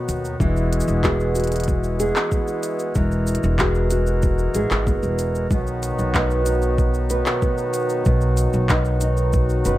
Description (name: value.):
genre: folktronica.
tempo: 94 BPM.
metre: 4/4.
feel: straight.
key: unclear.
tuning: A4 = 438 Hz.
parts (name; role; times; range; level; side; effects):
hand-pumped harmonium; sustained chords; 0.0-9.8 s; D#3 to A#4; -26 LUFS; left 2 dB; none.
nylon-string guitar; arpeggios; 0.0-9.8 s; B2 to B4; -24 LUFS; right 2 dB; low-pass filter, digital delay.
upright bass; bass; 0.1-9.8 s; E1 to D#2; -22 LUFS; equal; none.
organic electronic drum kit; drums; 0.1-9.8 s; handclaps, hi-hat, shaker; -26 LUFS; equal; none.
electronic kick drum; drums; 0.4-9.5 s; none; -21 LUFS; equal; none.
room: light reverb.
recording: none.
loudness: -18 LUFS.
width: side -15 dB against mid.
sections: 0.0-9.8 A section.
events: filter sweep on nylon-string guitar 0.0-9.8.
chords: 0.4 Eadd9; 5.5 B.